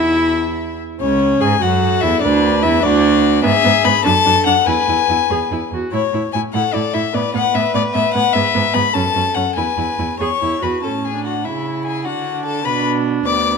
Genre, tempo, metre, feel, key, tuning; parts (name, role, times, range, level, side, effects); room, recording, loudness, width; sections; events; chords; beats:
quick classical-period movement for string quartet; 98 BPM (dotted quarters); 6/8; rubato; A major; A4 = 437 Hz
warm violin; melody; 0.0-13.6 s; C#5 to D6; -17 LUFS; left 10 dB
warm violin; second line; 0.0-13.6 s; E4 to E5; -24 LUFS; left 2 dB
warm viola; accompaniment; 0.0-13.6 s; B3 to G#4; -20 LUFS; right 3 dB
warm cello; bass; 0.0-13.6 s; C#2 to D3; -21 LUFS; right 5 dB
moderate concert hall reverb, RT60 2.3 s; -14 LUFS; side -5 dB against mid
0.0-1.0 A section; 1.0-10.8 B section; 10.8-13.6 A section
0.0 N.C.; 1.0 A/C#; 2.2 Bm/D; 3.4 E/G#; 4.1 D/F#; 4.7 E; 5.9 A; 7.1 D69/A; 8.3 E; 9.0 F#m; 9.6 E; 10.8 A; 11.5 C#m; 12.1 D; 12.7 Bm
0.37 | 1.00 1.62 | 2.23 2.84 | 3.44 4.05 | 4.67 5.30 | 5.93 6.54 | 7.15 7.75 | 8.35 8.95 | 9.57 10.21 | 10.84 11.46 | 12.07 12.67 | 13.27